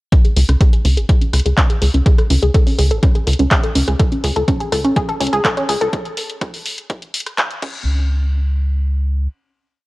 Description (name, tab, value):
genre	melodic techno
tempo	124 BPM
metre	4/4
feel	straight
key	unclear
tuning	A4 = 439 Hz
part	warbly dusty pluck	arpeggios	0.1-8.1 s	C#4 to A4	-20 LUFS	equal	chorus, sidechain pumping, analog delay
part	electronic kick drum	drums	0.1-7.7 s	none	-14 LUFS	equal	studio reverb
part	house drum kit	drums	0.1-7.7 s	crash cymbal, handclaps, hi-hat, rim click	-22 LUFS	equal	high-pass filter on hats, studio reverb, high-pass filter on snare, high-pass filter on cymbals
part	tight sequencer bass	bass	0.4-9.3 s	G#1 to C#2	-16 LUFS	equal	sidechain pumping
room	digital ambience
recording	dry, gritty hardware recording, cassette tape, high-pass filter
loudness	-14 LUFS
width	side -20 dB against mid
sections	0.1-7.9 build; 7.9-9.9 final hit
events	build-up 0.1-7.9; filter sweep on synth arpeggio sound 0.1-5.9; filter sweep 0.1-7.9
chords	0.1 C#5; 2.1 G#sus4; 5.9 N.C.